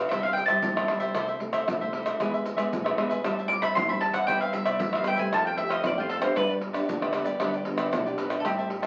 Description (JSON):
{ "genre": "samba and choro", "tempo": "115 BPM", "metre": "4/4", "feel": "straight", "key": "unclear", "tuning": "A4 = 440 Hz", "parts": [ { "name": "cavaquinho", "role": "accompaniment", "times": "0.0-8.9 s", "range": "D4 to A5", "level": "-34 LUFS", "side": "equal", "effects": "none" }, { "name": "nylon-string guitar", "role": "accompaniment", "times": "0.0-8.9 s", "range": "G2 to G4", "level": "-35 LUFS", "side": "equal", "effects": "none" }, { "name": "deep dub fingered electric bass", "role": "bass", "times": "0.0-8.9 s", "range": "A1 to D3", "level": "-47 LUFS", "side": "equal", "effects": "none" }, { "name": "bowl-back mandolin", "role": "second line", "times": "0.1-8.9 s", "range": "F4 to D6", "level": "-29 LUFS", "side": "equal", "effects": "none" }, { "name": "tube shaker, surdo, pandeiro and tamborim", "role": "percussion", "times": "0.1-8.9 s", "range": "none", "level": "-31 LUFS", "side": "equal", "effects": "none" } ], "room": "wet club reverb, RT60 0.6 s", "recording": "very old 78 rpm record, vinyl crackle", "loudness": "-27 LUFS", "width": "mono", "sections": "0.0-8.4 A section", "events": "mandolin solo 0.0-8.4", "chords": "0.1 C; 1.2 Am/C; 2.2 E; 3.2 Am7; 4.3 Cmaj7; 5.3 Fadd9; 6.4 G" }